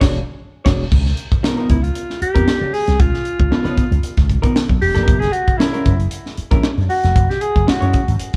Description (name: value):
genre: funk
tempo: 115 BPM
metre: 4/4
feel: straight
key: Db mixolydian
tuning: A4 = 440 Hz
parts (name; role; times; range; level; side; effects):
- vintage hollow-body jazz guitar; accompaniment; 0.0-8.0 s; F3 to C#5; -25 LUFS; equal; none
- slap bass with an envelope filter; bass; 0.0-8.4 s; E1 to Db3; -20 LUFS; equal; none
- crisp fusion drum kit; drums; 0.0-8.4 s; crash cymbal, hi-hat, kick drum, snare drum; -20 LUFS; equal; none
- breathy alto saxophone; melody; 1.7-8.2 s; Fb4 to Ab4; -23 LUFS; equal; tape echo
room: light reverb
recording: band playing live in one room, cassette tape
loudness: -17 LUFS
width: mono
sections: 0.9-8.4 A section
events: band accent 0.0-0.9; alto saxophone solo 0.9-8.4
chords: 0.0 E13; 0.9 Db13; 5.1 Gb9